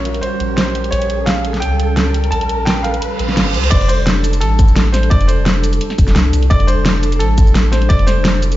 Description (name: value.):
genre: liquid drum and bass.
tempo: 172 BPM.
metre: 4/4.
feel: straight.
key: F major.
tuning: A4 = 440 Hz.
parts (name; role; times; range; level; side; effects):
bright grand piano; melody; 0.0-8.4 s; A4 to A5; -22 LUFS; equal; ping-pong delay.
airy breathy pad; sustained chords; 0.0-8.6 s; G3 to Bb4; -22 LUFS; equal; chorus, sidechain pumping.
warm sub bass; bass; 0.0-8.6 s; F1 to Db2; -16 LUFS; equal; none.
riser and reverse cymbal; sound effects; 0.0-3.7 s; none; -24 LUFS; right 2 dB; none.
pop drum kit; drums; 0.1-8.6 s; crash cymbal, hi-hat, shaker, snare drum; -19 LUFS; equal; none.
electronic kick drum; drums; 3.7-8.0 s; none; -13 LUFS; equal; none.
room: light reverb.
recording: played on a big sound system in a bare room, stone room reverb, nothing above 7.6 kHz.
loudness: -12 LUFS.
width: side -15 dB against mid.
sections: 0.0-3.7 A section; 3.7-8.6 B section.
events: build-up 0.0-3.7; riser 0.0-3.7; reverse cymbal 3.0-3.7; drop 3.7-8.6.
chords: 0.0 Bbm6; 3.7 F69.